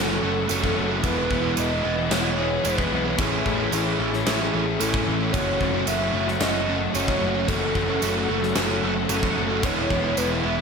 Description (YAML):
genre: rock, shoegaze and dream pop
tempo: 112 BPM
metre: 4/4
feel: straight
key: unclear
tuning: A4 = 440 Hz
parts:
  - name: pure sine lead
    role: melody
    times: 0.0-10.6 s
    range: G#4 to E5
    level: -28 LUFS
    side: left 1 dB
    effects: chorus, tape echo
  - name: string machine, cellos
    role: sustained chords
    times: 0.0-10.6 s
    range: A3 to F#6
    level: -36 LUFS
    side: equal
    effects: none
  - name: electric guitar at the edge of break-up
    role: arpeggios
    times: 0.0-10.6 s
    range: E3 to A4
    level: -34 LUFS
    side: left 12 dB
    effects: none
  - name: overdriven semi-hollow guitar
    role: riff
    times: 0.0-10.6 s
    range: A2 to F#4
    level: -29 LUFS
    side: left 12 dB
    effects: lush chorus
  - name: overdriven semi-hollow guitar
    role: riff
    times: 0.0-10.6 s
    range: A2 to F#4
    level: -28 LUFS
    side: right 12 dB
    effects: reverse reverb
  - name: sludgy distorted guitar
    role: riff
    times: 0.0-10.6 s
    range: F#2 to F#4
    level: -30 LUFS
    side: equal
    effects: overdrive
  - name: fuzz picked electric bass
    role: bass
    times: 0.0-10.6 s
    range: E1 to B1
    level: -29 LUFS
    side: equal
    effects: overdrive
  - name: gated 80s drum kit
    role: drums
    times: 0.5-10.3 s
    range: crash cymbal, kick drum, snare drum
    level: -28 LUFS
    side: right 1 dB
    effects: none
  - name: tambourine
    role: percussion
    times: 0.5-10.3 s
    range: none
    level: -33 LUFS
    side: right 11 dB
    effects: none
room: light reverb, small room ambience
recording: none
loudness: -20 LUFS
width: side -5 dB against mid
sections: 0.0-10.6 A section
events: none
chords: 0.0 F#m7; 1.0 Emaj7; 3.2 Amaj7; 5.3 F#m7; 9.6 Emaj7